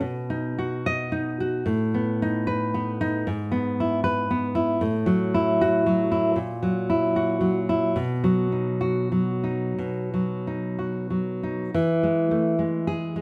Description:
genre	romantic piece for solo classical guitar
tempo	85-119 BPM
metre	3/4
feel	rubato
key	E major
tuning	A4 = 441 Hz
part	nylon-string guitar	solo	0.0-13.2 s	G#2 to D#5	-24 LUFS	equal	none
room	moderate recital hall reverb, RT60 1.7 s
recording	none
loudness	-25 LUFS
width	mono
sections	0.0-11.7 A section; 11.7-13.2 B section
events	none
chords	0.0 B; 1.7 B7/A; 3.3 E/G#; 4.8 F#m7/A; 6.4 F#7/A#; 8.0 B; 11.7 E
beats	| 0.01 0.57 1.12 | 1.67 2.21 2.76 | 3.28 3.79 4.32 | 4.83 5.36 5.87 | 6.38 6.90 7.43 | 7.98 8.52 9.11 | 9.78 10.46 11.09 | 11.72 12.29 12.85

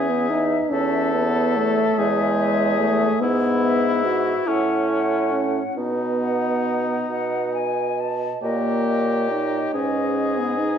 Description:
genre	classical, slow romantic movement for wind quintet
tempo	44-49 BPM (dotted quarters)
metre	6/8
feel	rubato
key	E major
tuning	A4 = 440 Hz
part	concert flute	melody	0.0-10.8 s	D#5 to A5	-28 LUFS	left 7 dB	none
part	warm oboe	second line	0.0-10.8 s	C#4 to A4	-26 LUFS	left 4 dB	none
part	dark clarinet	accompaniment	0.0-10.8 s	B4 to D#5	-31 LUFS	right 8 dB	none
part	warm French horn	accompaniment	0.0-10.8 s	G#3 to F#4	-23 LUFS	equal	none
part	mellow bassoon	bass	0.0-10.8 s	E2 to B2	-25 LUFS	right 2 dB	none
room	moderate scoring stage reverb, RT60 1.6 s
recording	dark, warm production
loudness	-19 LUFS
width	side -8 dB against mid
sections	0.0-10.8 A section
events	none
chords	0.0 E; 0.7 Amaj7/E; 3.2 E/G#; 4.5 F#m7/A; 5.8 B; 8.4 D#7/A#; 9.7 G#m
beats	| 0.71 1.98 | 3.21 4.47 | 5.76 7.10 | 8.44 9.75

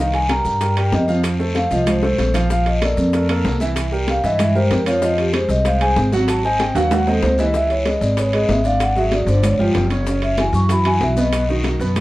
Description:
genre	Afro-Cuban jazz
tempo	190 BPM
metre	4/4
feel	straight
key	F minor, C# minor from 7.5 s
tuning	A4 = 441 Hz
part	vibraphone with soft mallets	melody	0.0-11.5 s	E#4 to C#6	-20 LUFS	left 1 dB	none
part	warm concert grand piano	accompaniment	0.0-12.0 s	B2 to Gb5	-22 LUFS	right 2 dB	none
part	upright bass	bass	0.0-12.0 s	F#1 to G2	-20 LUFS	equal	none
part	bongos	percussion	0.1-12.0 s	none	-29 LUFS	left 4 dB	none
part	congas	percussion	0.1-12.0 s	none	-25 LUFS	equal	none
part	maracas	percussion	0.1-12.0 s	none	-40 LUFS	left 5 dB	none
part	timbales	percussion	0.1-12.0 s	none	-29 LUFS	right 4 dB	none
part	guiro	percussion	0.3-12.0 s	none	-34 LUFS	left 2 dB	none
room	light reverb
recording	worn, warbling old tape, cassette tape, warbly pitch drift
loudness	-15 LUFS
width	side -17 dB against mid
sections	0.0-7.5 A section; 7.5-12.0 A section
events	vibraphone solo 0.0-12.0; drum fill 2.0-2.5, 6.8-7.5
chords	0.0 Cm7; 1.2 F; 2.5 Bbmaj9#11; 3.8 C7; 5.0 Fm; 6.3 Ab7; 7.5 C#m7; 8.8 G#7#11; 9.4 G5; 10.1 F#7sus4; 11.3 B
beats	0.29 0.61 0.92 | 1.24 1.55 1.87 2.18 | 2.50 2.81 3.13 3.44 | 3.76 4.08 4.39 4.71 | 5.02 5.34 5.65 5.97 | 6.28 6.60 6.91 7.23 | 7.54 7.86 8.17 8.49 | 8.80 9.12 9.43 9.75 | 10.06 10.38 10.69 11.01 | 11.32 11.64 11.96

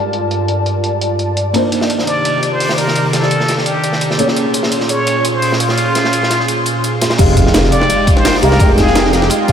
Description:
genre	liquid drum and bass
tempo	170 BPM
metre	4/4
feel	straight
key	unclear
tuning	A4 = 440 Hz
part	felt-muted upright piano	accompaniment	0.0-9.5 s	Bb3 to G5	-19 LUFS	equal	ensemble chorus, tape echo
part	airy breathy pad	sustained chords	0.0-9.5 s	G2 to C6	-18 LUFS	equal	chorus, sidechain pumping
part	breakbeat sampler-style drum kit	drums	0.1-9.5 s	crash cymbal, hi-hat, snare drum	-20 LUFS	right 1 dB	low-pass filter on hats, low-pass filter on cymbals, low-pass filter on snare
part	crunchy breakbeat drum kit	drums	1.5-9.5 s	hi-hat, ride cymbal, snare drum	-20 LUFS	equal	high-pass filter on cymbals, high-pass filter on hats, high-pass filter on snare, high-pass filter on room
part	trumpet with plunger mute	melody	2.1-9.5 s	F4 to D5	-18 LUFS	equal	tape echo
part	swelling detuned saw bass	bass	7.2-9.5 s	F1 to C2	-14 LUFS	equal	tube saturation
part	electronic kick drum	drums	7.2-9.5 s	none	-13 LUFS	equal	none
part	impact	sound effects	7.2-8.6 s	none	-21 LUFS	equal	none
room	wet huge ambient reverb, RT60 8.1 s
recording	dreamy mix soaked in reverb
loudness	-11 LUFS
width	side -8 dB against mid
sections	0.0-7.2 A section; 7.2-9.5 B section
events	filter sweep on analog synth pad 0.0-7.2; drop 7.2-9.5; impact 7.2-8.6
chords	0.0 Gm9; 1.5 Cm9; 4.2 Bbm9; 7.2 Fm9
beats	| 0.13 0.48 0.84 1.19 | 1.54 1.90 2.25 2.60 | 2.96 3.31 3.66 4.01 | 4.37 4.72 5.07 5.43 | 5.78 6.13 6.49 6.84 | 7.19 7.54 7.90 8.25 | 8.60 8.96 9.31

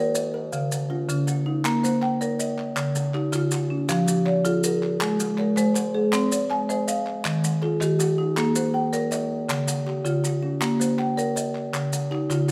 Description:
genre	southern african traditional, mbira-style interlocking cycle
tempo	107 BPM (dotted quarters)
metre	12/8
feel	straight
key	Bb equiheptatonic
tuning	A4 = 442 Hz
part	kalimba	arpeggios	0.0-12.5 s	Db3+43c to Ab5+29c	-30 LUFS	equal	none
part	marimba with medium mallets	arpeggios	0.0-12.5 s	Db3+43c to Ab5+29c	-26 LUFS	equal	none
part	maracas	percussion	0.1-12.5 s	none	-35 LUFS	equal	none
part	group handclap	percussion	1.7-12.5 s	none	-35 LUFS	equal	none
room	light reverb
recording	close, detailed microphones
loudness	-24 LUFS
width	mono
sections	0.0-1.7 A section; 1.7-12.5 B section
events	none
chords	0.0 Bbm; 0.5 Db; 1.7 Bbm; 2.8 Db; 3.9 Fm; 5.0 Ab; 6.1 Cm; 7.3 Eb; 8.4 Bbm; 9.5 Db; 10.6 Bbm; 11.7 Db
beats	0.53 1.09 | 1.65 2.21 2.77 3.33 | 3.90 4.46 5.01 5.57 | 6.13 6.69 7.25 7.81 | 8.37 8.93 9.49 10.05 | 10.61 11.17 11.73 12.29

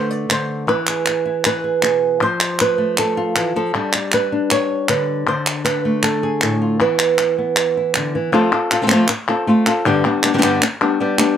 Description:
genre	flamenco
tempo	157 BPM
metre	4/4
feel	straight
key	unclear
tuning	A4 = 440 Hz
part	flamenco guitar	melody	0.0-11.4 s	G2 to D5	-16 LUFS	equal	none
part	palmas hand claps	percussion	0.3-11.4 s	none	-20 LUFS	equal	none
room	light reverb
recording	close, detailed microphones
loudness	-15 LUFS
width	side -9 dB against mid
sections	0.0-8.3 A section; 8.3-11.4 B section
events	none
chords	0.0 D5; 0.7 E; 2.2 F; 3.7 G; 5.3 D5; 6.8 E5; 8.3 F; 9.9 G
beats	0.29 | 0.68 1.06 1.44 1.82 | 2.21 2.59 2.97 3.36 | 3.74 4.12 4.51 4.89 | 5.27 5.65 6.04 6.42 | 6.80 7.18 7.57 7.95 | 8.33 8.71 9.09 9.47 | 9.85 10.23 10.62 11.00

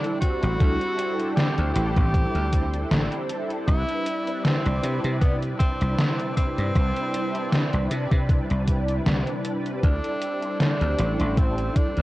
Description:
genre	vaporwave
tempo	78 BPM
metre	4/4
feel	swing 54% on 16ths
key	C lydian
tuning	A4 = 438 Hz
part	clear tenor saxophone	melody	0.0-12.0 s	B3 to G4	-29 LUFS	equal	tape echo
part	mellow synth brass	accompaniment	0.0-12.0 s	C3 to D5	-29 LUFS	equal	ensemble chorus, tape echo
part	gated 80s digital drum machine	drums	0.0-12.0 s	hi-hat, snare drum	-25 LUFS	equal	gated reverb, gated reverb snare, overdrive
part	electronic kick drum	drums	0.2-11.9 s	none	-21 LUFS	equal	overdrive
part	dry thumbed slap bass	bass	0.4-12.0 s	A1 to C3	-25 LUFS	equal	none
room	little or no reverb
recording	dry, gritty hardware recording, cassette tape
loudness	-21 LUFS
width	side -17 dB against mid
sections	0.0-12.0 A section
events	none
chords	0.0 D7sus4; 3.7 Cmaj7; 9.8 D7sus4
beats	| 0.60 1.37 2.14 2.91 | 3.68 4.45 5.22 5.99 | 6.76 7.53 8.30 9.06 | 9.83 10.60 11.37

